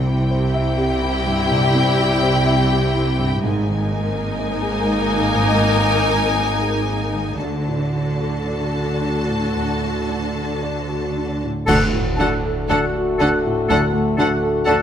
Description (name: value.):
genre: cinematic, emotional film score for orchestra.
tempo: 55-63 BPM.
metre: 4/4.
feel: rubato.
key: unclear.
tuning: A4 = 438 Hz.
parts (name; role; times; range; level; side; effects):
warm symphonic violin section; melody; 0.0-14.7 s; F#5 to A5; -26 LUFS; left 3 dB; none.
warm symphonic violin section; second line; 0.0-14.7 s; G4 to A#4; -28 LUFS; left 2 dB; none.
dark concert grand piano; accompaniment; 0.0-14.8 s; C2 to E5; -23 LUFS; equal; none.
warm symphonic viola section; accompaniment; 0.0-14.8 s; D#4 to F#4; -28 LUFS; equal; none.
warm French horn section; sustained chords; 0.0-14.8 s; G3 to F#4; -25 LUFS; left 3 dB; none.
rich symphonic double bass section; bass; 0.0-14.8 s; G#1 to D2; -25 LUFS; right 2 dB; none.
warm symphonic cello section; bass; 0.0-14.8 s; G#2 to D3; -25 LUFS; right 2 dB; none.
clear clarinet; second line; 11.7-14.8 s; A4; -26 LUFS; left 1 dB; none.
mellow hollow silver concert flute; second line; 11.7-14.8 s; A5; -26 LUFS; left 1 dB; none.
mellow oboe; second line; 11.7-14.8 s; F#5; -26 LUFS; left 1 dB; none.
clash cymbals and concert bass drum; percussion; 11.7-13.7 s; none; -28 LUFS; equal; none.
timpani; percussion; 11.7-13.2 s; D3; -30 LUFS; right 1 dB; none.
room: moderate scoring stage reverb, RT60 1.7 s.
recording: none.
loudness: -17 LUFS.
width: side -9 dB against mid.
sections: 0.0-11.7 A section; 11.7-14.8 B section.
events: band accent 11.7-12.7.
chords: 0.0 C; 3.4 G#sus2; 7.4 D.